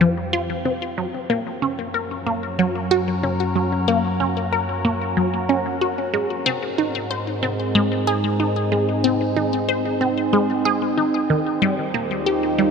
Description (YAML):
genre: ambient, sequencer-driven space music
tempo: 93 BPM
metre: 4/4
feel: straight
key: unclear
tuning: A4 = 437 Hz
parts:
  - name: evolving wavetable pad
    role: sustained chords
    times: 0.0-12.7 s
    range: Eb3 to Bb4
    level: -24 LUFS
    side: right 1 dB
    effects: phaser, built-in reverb
  - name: resonant blip pluck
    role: riff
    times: 0.0-12.7 s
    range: Eb3 to C5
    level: -21 LUFS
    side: equal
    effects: phaser, ping-pong delay
  - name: analog drone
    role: bass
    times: 0.0-12.7 s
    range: Eb2 to Ab2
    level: -28 LUFS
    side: equal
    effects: chorus
room: wet huge ambient reverb, RT60 7.9 s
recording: none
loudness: -19 LUFS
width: side -6 dB against mid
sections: 0.0-12.7 A section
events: fade-in on ambient pad 0.0-12.7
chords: 0.0 Fsus2; 1.0 Gb; 6.1 Ab; 11.3 Ebadd9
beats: 0.33 | 0.97 1.62 2.27 2.91 | 3.56 4.20 4.85 5.49 | 6.14 6.78 7.43 8.07 | 8.72 9.36 10.01 10.65 | 11.30 11.94 12.59